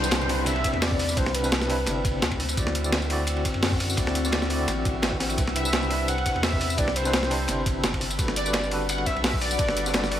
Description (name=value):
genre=liquid drum and bass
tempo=171 BPM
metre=4/4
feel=swing 54% on 16ths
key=C lydian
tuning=A4 = 440 Hz
part: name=warm velvety synth lead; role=melody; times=0.0-2.0, 5.6-10.2 s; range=B4 to F#5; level=-29 LUFS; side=equal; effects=chorus, tape echo
part: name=tine electric piano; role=accompaniment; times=0.0-10.2 s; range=C3 to E5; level=-30 LUFS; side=equal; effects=medium tremolo, ping-pong delay
part: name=glassy FM pad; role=sustained chords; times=0.0-10.2 s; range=G3 to E6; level=-34 LUFS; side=left 4 dB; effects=ensemble chorus, built-in reverb, sidechain pumping
part: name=saturated sub bass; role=bass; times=0.0-10.2 s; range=G1 to F#2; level=-30 LUFS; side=equal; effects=none
part: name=breakbeat sampler-style drum kit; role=drums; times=0.0-10.2 s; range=hi-hat, snare drum, tambourine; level=-27 LUFS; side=equal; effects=none
part: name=downlifter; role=sound effects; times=0.0-2.6 s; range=none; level=-34 LUFS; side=equal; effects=none
part: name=crunchy breakbeat drum kit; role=drums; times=0.1-10.2 s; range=hi-hat, ride cymbal, snare drum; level=-33 LUFS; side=equal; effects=high-pass filter on cymbals, high-pass filter on hats, high-pass filter on snare, high-pass filter on room
part: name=electronic kick drum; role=drums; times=0.6-9.7 s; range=none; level=-29 LUFS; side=equal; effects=none
room=light reverb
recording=none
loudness=-22 LUFS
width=side -11 dB against mid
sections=0.0-10.2 A section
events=none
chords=0.0 Cmaj7; 2.4 D9; 5.4 Cmaj7; 8.0 Gmaj7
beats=0.12 0.47 0.82 | 1.17 1.52 1.87 2.22 | 2.57 2.92 3.27 3.63 | 3.98 4.33 4.68 5.03 | 5.38 5.73 6.08 6.43 | 6.78 7.13 7.49 7.84 | 8.19 8.54 8.89 9.24 | 9.59 9.94